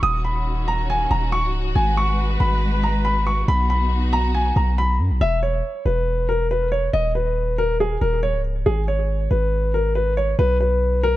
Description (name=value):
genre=hip hop, trap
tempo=139 BPM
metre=4/4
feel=half-time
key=G# minor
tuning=A4 = 440 Hz
part: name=dark grand piano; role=melody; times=0.0-11.2 s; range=G#4 to D#6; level=-22 LUFS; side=equal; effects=analog delay
part: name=warm symphonic string section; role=sustained chords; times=0.0-5.2 s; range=D#3 to B4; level=-28 LUFS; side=left 2 dB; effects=none
part: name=long sustained 808-style bass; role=bass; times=0.0-11.2 s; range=C#1 to F#2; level=-21 LUFS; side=equal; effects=none
room=small room ambience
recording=echo-heavy mix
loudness=-18 LUFS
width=side -15 dB against mid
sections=0.0-5.2 A section; 5.2-11.2 B section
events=none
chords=0.0 D#m7; 1.8 G#m7; 3.5 B; 5.2 E5; 6.9 Badd9; 8.7 G#m; 10.4 B5